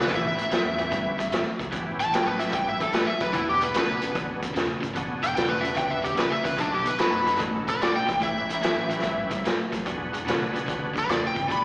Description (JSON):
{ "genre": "blues rock power trio and southern rock", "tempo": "147 BPM", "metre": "4/4", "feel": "swing 67% on 8ths", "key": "unclear", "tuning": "A4 = 440 Hz", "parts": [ { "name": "overdriven slide guitar", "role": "melody", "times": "0.0-11.6 s", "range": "D4 to B5", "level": "-26 LUFS", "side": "equal", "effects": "slapback echo" }, { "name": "distorted electric guitar", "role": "riff", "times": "0.0-11.6 s", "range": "E2 to A3", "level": "-33 LUFS", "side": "equal", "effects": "distortion, slapback echo" }, { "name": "overdriven picked electric bass", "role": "bass", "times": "0.0-11.5 s", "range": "E1 to F#2", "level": "-37 LUFS", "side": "equal", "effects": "none" }, { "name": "raw garage drum kit", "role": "drums", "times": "0.0-11.6 s", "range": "hi-hat, kick drum, snare drum", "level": "-27 LUFS", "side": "equal", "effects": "none" }, { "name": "overdriven tonewheel organ", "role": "sustained chords", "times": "0.1-11.6 s", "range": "B3 to D5", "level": "-32 LUFS", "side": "equal", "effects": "chorus vibrato, wide subtle chorus" } ], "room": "moderate plate reverb, RT60 1.4 s, studio reverb", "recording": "live gig heard through the venue's PA, recital hall reverb, small speaker sound", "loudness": "-23 LUFS", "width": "side -24 dB against mid", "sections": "0.0-11.6 A section", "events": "none", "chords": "0.1 A7; 3.3 E7; 6.6 B7; 8.2 A7; 9.9 E7" }